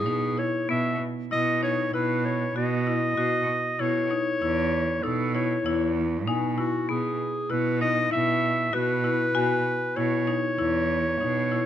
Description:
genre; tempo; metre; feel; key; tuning
contemporary instrumental, chamber music in an uneven meter; 97 BPM; 5/4; straight; unclear; A4 = 439 Hz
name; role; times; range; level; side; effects
clear clarinet; melody; 0.0-11.7 s; F#4 to E5; -27 LUFS; equal; none
clear cello; bass; 0.0-11.7 s; E2 to B2; -28 LUFS; right 5 dB; none
marimba with hard mallets; arpeggios; 0.1-11.7 s; B3 to F#4; -28 LUFS; left 5 dB; none
celesta; texture; 1.9-10.0 s; G#5 to B5; -34 LUFS; left 10 dB; none
room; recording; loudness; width
moderate recital hall reverb, RT60 1.5 s; none; -23 LUFS; side -10 dB against mid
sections
0.0-11.7 A section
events
none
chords
0.0 E6; 0.7 E5/B; 3.8 Emaj13; 6.9 E/B; 10.0 A (rootless)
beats
0.06 | 0.69 1.31 1.94 2.56 3.18 | 3.80 4.42 5.04 5.66 6.28 | 6.89 7.51 8.12 8.73 9.35 | 9.96 10.59 11.21

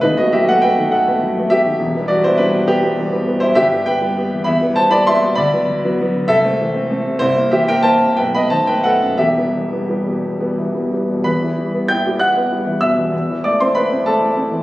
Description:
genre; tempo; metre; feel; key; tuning
classical, romantic character piece for solo piano; 56-69 BPM (dotted quarters); 6/8; rubato; E minor; A4 = 441 Hz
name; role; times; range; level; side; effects
warm grand piano; solo; 0.0-14.6 s; D#1 to G6; -14 LUFS; equal; none
room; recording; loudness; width
wet recital hall reverb, RT60 1.6 s; recorded on a phone in the room, studio reverb, compression; -14 LUFS; side -17 dB against mid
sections
0.0-11.2 A section; 11.2-14.6 B section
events
none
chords
0.0 B7/D#; 1.8 Em; 3.6 Em/G; 4.5 Em; 5.4 Bm/D; 6.3 Am/C; 7.2 C7; 8.2 B7; 9.2 Em; 13.1 Am/E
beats
| 0.02 0.92 | 1.79 2.69 | 3.56 4.46 | 5.37 6.29 | 7.20 8.17 | 9.19 10.21 | 11.25 12.20 | 13.13 14.05

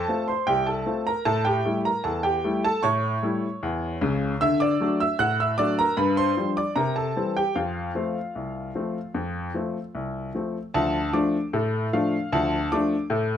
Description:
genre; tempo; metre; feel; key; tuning
ragtime piano; 76 BPM; 2/4; straight; unclear; A4 = 440 Hz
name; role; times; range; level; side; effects
bright baby grand piano; solo; 0.0-13.4 s; C2 to F#6; -22 LUFS; equal; none
room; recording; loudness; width
light reverb; dark, warm production; -22 LUFS; side -9 dB against mid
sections
0.0-10.7 A section; 10.7-13.4 B section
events
none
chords
0.0 F; 1.3 A7; 4.4 D; 6.0 G7; 6.8 C7; 7.6 F; 10.7 Dm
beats
0.47 | 1.26 2.05 | 2.83 3.62 | 4.41 5.19 | 5.97 6.76 | 7.56 8.35 | 9.15 9.95 | 10.74 11.53 | 12.32 13.11

